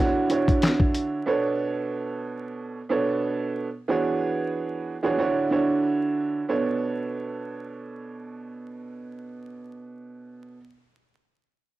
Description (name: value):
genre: hip hop, boom-bap hip-hop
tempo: 92 BPM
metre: 4/4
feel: swing 56% on 16ths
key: B dorian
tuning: A4 = 441 Hz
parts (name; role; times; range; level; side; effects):
- clear upright piano; accompaniment; 0.0-10.6 s; B2 to C#5; -25 LUFS; right 3 dB; high-pass filter, low-pass filter, cassette tape
- dusty soul sampler-style drum kit; drums; 0.3-1.1 s; handclaps, hi-hat, kick drum, snare drum; -21 LUFS; left 1 dB; none
room: moderate studio reverb, RT60 0.7 s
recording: home recording on cassette, vinyl crackle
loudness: -23 LUFS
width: side -15 dB against mid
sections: 0.0-6.5 A section; 6.5-9.1 B section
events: none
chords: 0.0 Dmaj7; 1.3 Bm9; 3.9 E13; 5.2 Dmaj7; 6.5 Bm9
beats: 0.62 | 1.27 1.92 2.58 3.23 | 3.88 4.53 5.18 5.84 | 6.49 7.14 7.79 8.45